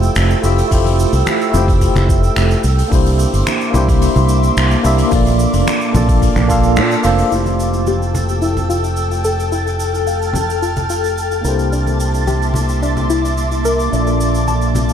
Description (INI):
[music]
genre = sunset chillout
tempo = 109 BPM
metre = 4/4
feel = straight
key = F major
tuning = A4 = 439 Hz
[part]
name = tine electric piano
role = accompaniment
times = 0.0-14.9 s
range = A3 to F5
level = -20 LUFS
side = moving between left 4 dB and right 4 dB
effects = medium stereo tremolo, auto-pan, ping-pong delay
[part]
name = ethereal airy pad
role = sustained chords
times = 0.0-14.9 s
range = Bb3 to F6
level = -20 LUFS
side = equal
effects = ensemble chorus, built-in reverb
[part]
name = fingered electric bass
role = bass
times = 0.0-14.9 s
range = F1 to Bb2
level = -16 LUFS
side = equal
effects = tube saturation
[part]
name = jazz brush drum kit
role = drums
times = 0.0-14.9 s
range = finger snaps, hi-hat, shaker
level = -25 LUFS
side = equal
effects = none
[part]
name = electronic kick drum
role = drums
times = 0.7-6.6 s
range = none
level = -16 LUFS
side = equal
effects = none
[part]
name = congas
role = percussion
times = 0.9-14.9 s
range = none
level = -22 LUFS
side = left 2 dB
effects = none
[part]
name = soft round pluck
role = arpeggios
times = 7.3-14.7 s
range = D4 to A5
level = -23 LUFS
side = left 3 dB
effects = chorus, ping-pong delay
[part]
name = twinkling granular texture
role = texture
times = 7.8-14.9 s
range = A5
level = -27 LUFS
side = right 4 dB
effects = built-in reverb
[sound]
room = light reverb, studio reverb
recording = dark, warm production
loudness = -13 LUFS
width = side -9 dB against mid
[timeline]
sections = 0.0-7.3 A section; 7.3-14.9 B section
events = band accent 6.8; filter sweep on synth pluck 7.3-14.9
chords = 0.0 Fmaj9; 2.6 C9; 5.1 Bbmaj7; 7.3 Fmaj9; 11.4 C9; 13.9 Bbmaj7